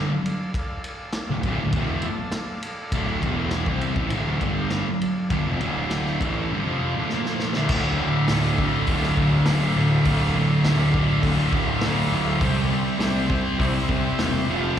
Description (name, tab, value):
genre	garage rock duo or trio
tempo	101 BPM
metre	4/4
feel	straight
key	D minor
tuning	A4 = 441 Hz
part	overdriven combo organ	sustained chords	0.0-14.8 s	G4 to A5	-36 LUFS	equal	none
part	thick fuzz guitar	riff	0.0-14.8 s	D2 to C4	-22 LUFS	equal	distortion, slapback echo
part	fuzz picked electric bass	bass	0.0-14.8 s	D1 to C2	-28 LUFS	equal	overdrive
part	vintage drum kit	drums	0.3-14.3 s	crash cymbal, hi-hat, kick drum, ride cymbal, snare drum	-29 LUFS	equal	none
room	small room ambience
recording	live gig heard through the venue's PA, recital hall reverb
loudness	-20 LUFS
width	side -9 dB against mid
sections	0.0-7.7 A section; 7.7-14.8 B section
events	transistor combo organ fill 1.7-2.9; drum fill 7.1-7.7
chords	0.0 Dm; 12.4 C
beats	| 0.53 1.13 1.73 2.32 | 2.92 3.52 4.11 4.71 | 5.31 5.90 6.50 7.09 | 7.69 8.28 8.88 9.47 | 10.06 10.65 11.24 11.84 | 12.43 13.02 13.61 14.19 | 14.78